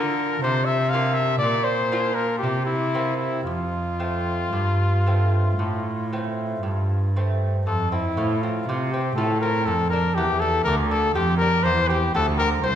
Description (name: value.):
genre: classical, baroque-style sonata movement with continuo.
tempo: 56-61 BPM.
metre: 4/4.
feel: rubato.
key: F major.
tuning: A4 = 438 Hz.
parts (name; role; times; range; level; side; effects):
clear trumpet; melody; 0.0-12.8 s; E4 to F5; -24 LUFS; left 3 dB; none.
lute; accompaniment; 0.0-12.8 s; D2 to D5; -29 LUFS; right 2 dB; none.
rich cello; bass; 0.0-12.8 s; C2 to D3; -23 LUFS; right 1 dB; none.
room: wet recital hall reverb, RT60 1.4 s.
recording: recorded in a church or concert hall.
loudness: -20 LUFS.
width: side -10 dB against mid.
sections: 0.0-7.7 A section; 7.7-12.8 B section.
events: none.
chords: 0.0 Bb/D; 1.4 Bb; 2.4 C7; 3.5 F; 9.7 G5; 11.7 C.